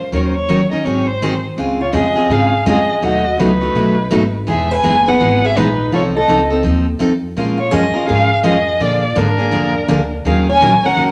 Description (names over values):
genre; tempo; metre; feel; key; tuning
acoustic string swing (jazz manouche); 166 BPM; 4/4; swing 62% on 8ths; Db major; A4 = 440 Hz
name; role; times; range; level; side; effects
warm violin; melody; 0.0-11.1 s; Bb4 to Ab5; -20 LUFS; equal; none
picked steel-string acoustic guitar; accompaniment; 0.1-11.1 s; Cb3 to Bb4; -19 LUFS; equal; none
upright bass; bass; 0.1-11.1 s; E1 to Bb2; -23 LUFS; equal; none
picked steel-string acoustic guitar; second line; 1.8-11.1 s; D4 to Db5; -22 LUFS; equal; none
room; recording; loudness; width
wet large studio reverb, RT60 1.0 s; none; -15 LUFS; mono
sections
0.0-1.6 A section; 1.6-11.1 B section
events
none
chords
0.1 Ebm7; 0.8 Ab7; 1.6 Dbmaj9; 3.0 Cb13; 4.5 Emaj7; 5.9 F7b13; 7.4 Bbm7; 8.8 Bb7; 10.2 Ebm11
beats
| 0.12 0.48 0.84 1.21 | 1.57 1.93 2.30 2.66 | 3.02 3.38 3.75 4.11 | 4.47 4.83 5.20 5.56 | 5.92 6.28 6.64 7.00 | 7.37 7.73 8.09 8.45 | 8.81 9.17 9.53 9.89 | 10.25 10.61 10.97